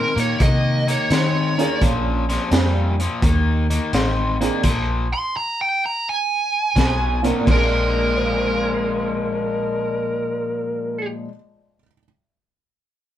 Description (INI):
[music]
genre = electric blues shuffle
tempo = 85 BPM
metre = 4/4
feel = swing 68% on 8ths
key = Bb mixolydian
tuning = A4 = 439 Hz
[part]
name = smooth overdriven lead guitar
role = melody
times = 0.0-11.1 s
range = Bb4 to C6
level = -22 LUFS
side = right 1 dB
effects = none
[part]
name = crunchy overdriven guitar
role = riff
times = 0.0-11.3 s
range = Bb2 to D4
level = -24 LUFS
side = left 3 dB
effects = spring reverb
[part]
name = vintage muted fingered electric bass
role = bass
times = 0.0-11.2 s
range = A1 to Eb3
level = -22 LUFS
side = equal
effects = none
[part]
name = crunchy breakbeat drum kit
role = drums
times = 0.2-7.7 s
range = crash cymbal, hi-hat, kick drum, snare drum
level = -22 LUFS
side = equal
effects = none
[part]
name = honky-tonk upright piano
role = accompaniment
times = 1.6-12.0 s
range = Bb2 to C7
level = -24 LUFS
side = right 4 dB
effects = none
[sound]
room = light reverb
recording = band playing live in one room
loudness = -18 LUFS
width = side -11 dB against mid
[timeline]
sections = 0.0-7.5 A section; 7.5-10.3 B section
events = stop 4.6-6.8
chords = 0.0 Eb5; 1.8 Bb7; 3.2 Eb5; 4.6 Bb5; 6.8 B5; 7.5 Bb7